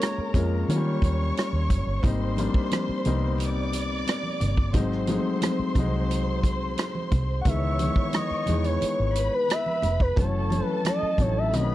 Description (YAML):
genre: lush 1970s-style soul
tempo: 88 BPM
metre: 4/4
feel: straight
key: unclear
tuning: A4 = 438 Hz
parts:
  - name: expressive portamento lead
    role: melody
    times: 0.0-1.2, 7.4-11.7 s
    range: B4 to F#5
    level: -28 LUFS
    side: equal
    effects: chorus
  - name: warm studio string section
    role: second line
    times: 0.0-11.7 s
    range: A4 to D6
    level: -33 LUFS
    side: right 1 dB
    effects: none
  - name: warm grand piano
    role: accompaniment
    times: 0.0-11.7 s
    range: D#3 to E#4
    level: -29 LUFS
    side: left 3 dB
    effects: none
  - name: vintage drum kit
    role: drums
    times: 0.0-11.7 s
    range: hi-hat, kick drum, rim click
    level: -26 LUFS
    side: equal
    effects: none
  - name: vintage muted fingered electric bass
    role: bass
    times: 0.2-11.7 s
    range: F1 to D#3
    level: -26 LUFS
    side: equal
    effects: none
  - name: congas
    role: percussion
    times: 2.0-11.7 s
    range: none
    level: -34 LUFS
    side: right 3 dB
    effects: none
room: studio ambience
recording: dry, close 1970s-style studio recording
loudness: -22 LUFS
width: side -14 dB against mid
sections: 0.0-11.7 A section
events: none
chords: 0.0 A#m7; 0.7 D#7; 2.0 G#maj7; 4.7 G#7; 7.5 C#m9; 10.2 F#m7